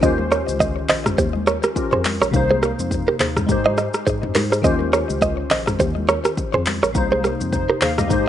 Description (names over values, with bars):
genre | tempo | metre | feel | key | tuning
afrobeats | 104 BPM | 4/4 | swing 58% on 16ths | Eb mixolydian | A4 = 440 Hz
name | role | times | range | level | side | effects
glassy digital keys | accompaniment | 0.0-8.3 s | C3 to F5 | -24 LUFS | left 2 dB | chorus
direct-recorded clean electric guitar | riff | 0.0-7.9 s | G4 to Eb5 | -20 LUFS | right 3 dB | ping-pong delay
mellow tine electric piano | bass | 0.0-8.3 s | Bb1 to Ab2 | -26 LUFS | left 1 dB | medium stereo tremolo
deep house drum kit | drums | 0.0-8.3 s | handclaps, hi-hat, kick drum, rim click, shaker, toms | -23 LUFS | left 1 dB | none
congas | percussion | 0.2-8.3 s | none | -30 LUFS | left 2 dB | none
room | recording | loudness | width
little or no reverb | rough home demo mix, nothing above 10.9 kHz | -17 LUFS | side -10 dB against mid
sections
0.0-8.3 A section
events
none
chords
0.0 Eb13; 2.3 Cm7; 3.5 Abmaj7; 4.6 Eb13; 7.0 Cm7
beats
| 0.03 0.60 1.18 1.76 | 2.34 2.91 3.49 4.07 | 4.64 5.22 5.80 6.37 | 6.95 7.53 8.11